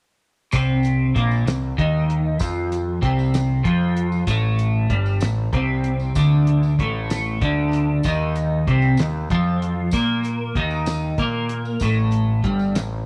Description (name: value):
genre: psychedelic rock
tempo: 64 BPM (dotted quarters)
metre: 6/8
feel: straight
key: C dorian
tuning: A4 = 440 Hz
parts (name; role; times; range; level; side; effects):
- twelve-string electric guitar; riff; 0.5-13.0 s; G2 to Bb3; -22 LUFS; equal; phaser, double-tracked
- growling picked electric bass; bass; 0.5-13.0 s; G1 to Bb2; -28 LUFS; equal; overdrive
- cloth-damped thuddy drum kit; drums; 0.5-12.9 s; hi-hat, kick drum, snare drum; -29 LUFS; equal; none
- tambourine; percussion; 0.5-12.9 s; none; -44 LUFS; equal; none
room: light reverb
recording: none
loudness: -21 LUFS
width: mono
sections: 0.5-13.1 A section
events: none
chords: 0.5 Cm; 4.3 Gsus24; 8.0 Eb5; 11.8 C5 (rootless)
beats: | 0.53 1.47 | 2.40 3.34 | 4.28 5.22 | 6.16 7.10 | 8.04 8.98 | 9.92 10.87 | 11.81 12.75